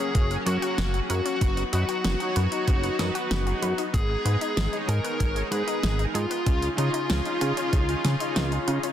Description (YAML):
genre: synthwave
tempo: 95 BPM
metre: 4/4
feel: straight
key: unclear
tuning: A4 = 440 Hz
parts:
  - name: smooth overdriven lead guitar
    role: melody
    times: 0.0-8.9 s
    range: F4 to Bb4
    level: -30 LUFS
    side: left 1 dB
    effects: vintage 12-bit sampler grit, ping-pong delay
  - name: string machine, violins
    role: second line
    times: 0.0-8.9 s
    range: F4 to Bb4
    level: -36 LUFS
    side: left 1 dB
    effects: ensemble chorus, ping-pong delay
  - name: soft supersaw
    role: sustained chords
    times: 0.0-8.9 s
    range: Db3 to Ab4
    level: -34 LUFS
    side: equal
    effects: sidechain pumping
  - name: analog pluck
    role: arpeggios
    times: 0.0-8.9 s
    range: Ab3 to D#5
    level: -35 LUFS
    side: left 4 dB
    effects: chorus, ping-pong delay
  - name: mellow synth brass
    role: stabs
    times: 0.0-8.8 s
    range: Db4 to F5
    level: -34 LUFS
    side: right 2 dB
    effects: chorus, vintage 12-bit sampler grit
  - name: chorused synth bass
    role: bass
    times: 0.1-8.8 s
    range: Gb1 to Db3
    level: -26 LUFS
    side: equal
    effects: sidechain pumping
  - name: electronic kick drum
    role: drums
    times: 0.1-7.9 s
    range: none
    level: -23 LUFS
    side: equal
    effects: none
  - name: pop drum kit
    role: drums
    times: 0.1-8.9 s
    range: hi-hat, snare drum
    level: -32 LUFS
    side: equal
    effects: none
room: light reverb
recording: dense, heavily limited modern master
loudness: -23 LUFS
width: side -10 dB against mid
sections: 0.0-8.9 A section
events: none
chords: 0.0 Gb; 1.4 B/F#; 3.9 Abm; 6.5 Dbadd9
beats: 0.15 0.78 | 1.41 2.04 2.67 3.31 | 3.94 4.57 5.20 5.83 | 6.46 7.10 7.73 8.36